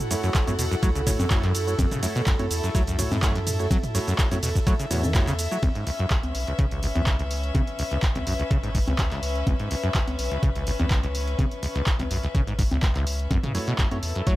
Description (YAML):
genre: acid house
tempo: 125 BPM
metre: 4/4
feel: straight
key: C# minor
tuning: A4 = 441 Hz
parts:
  - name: warbly tape-like pad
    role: sustained chords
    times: 0.0-5.6 s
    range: E4 to A4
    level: -35 LUFS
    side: right 2 dB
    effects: chorus, built-in reverb, sidechain pumping
  - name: punchy analog drum machine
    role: drums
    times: 0.0-14.4 s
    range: congas, handclaps, hi-hat, ride cymbal, shaker, toms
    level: -30 LUFS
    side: equal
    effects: none
  - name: rich chamber string section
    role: texture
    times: 0.0-14.4 s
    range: C#4 to F#5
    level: -33 LUFS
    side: left 1 dB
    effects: sidechain pumping
  - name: acid bass, saw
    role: riff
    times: 0.1-14.3 s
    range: C#2 to F#3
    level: -28 LUFS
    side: equal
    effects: tube saturation, lush chorus
  - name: percussive organ stab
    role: stabs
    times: 0.1-5.6, 13.5-14.3 s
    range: A3 to C#5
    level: -33 LUFS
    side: right 2 dB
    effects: chorus, tape echo
  - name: electronic kick drum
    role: drums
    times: 0.3-14.4 s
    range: none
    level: -23 LUFS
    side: equal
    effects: none
  - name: warm sub bass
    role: bass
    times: 0.5-14.4 s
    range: G#1 to F#2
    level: -29 LUFS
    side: equal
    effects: sidechain pumping
room: little or no reverb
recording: none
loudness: -22 LUFS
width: side -16 dB against mid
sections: 0.0-5.6 A section; 5.6-14.4 B section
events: drop 0.0-5.6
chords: 0.0 F#m7; 5.6 C#m7; 13.3 F#m7